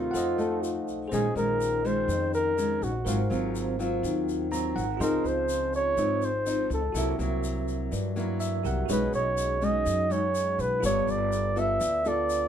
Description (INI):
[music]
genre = bossa nova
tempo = 124 BPM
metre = 4/4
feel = straight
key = Bb minor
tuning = A4 = 440 Hz
[part]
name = breathy flugelhorn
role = melody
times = 0.0-12.5 s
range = F4 to E5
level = -27 LUFS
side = right 1 dB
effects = none
[part]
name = bell-like tine electric piano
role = accompaniment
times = 0.0-12.5 s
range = Db4 to C6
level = -36 LUFS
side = right 4 dB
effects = medium stereo tremolo
[part]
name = nylon-string guitar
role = accompaniment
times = 0.0-12.5 s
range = F2 to A4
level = -30 LUFS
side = left 2 dB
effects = none
[part]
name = upright bass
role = bass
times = 0.0-12.5 s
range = G1 to G2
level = -33 LUFS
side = equal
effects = none
[part]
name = egg shaker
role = percussion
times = 0.1-12.5 s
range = none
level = -42 LUFS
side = left 7 dB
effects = none
[part]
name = breathy trombone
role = second line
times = 0.4-1.1 s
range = F4 to A4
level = -34 LUFS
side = left 4 dB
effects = none
[sound]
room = light reverb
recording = none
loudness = -25 LUFS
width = side -9 dB against mid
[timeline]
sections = 0.0-1.1 A section; 1.1-12.5 B section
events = tine electric piano fill 4.3-5.0, 8.2-8.9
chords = 0.1 F7b9; 1.1 Bbm11; 3.1 Ab13; 5.0 Dbmaj9; 6.9 C7#11; 8.9 B69; 10.8 G9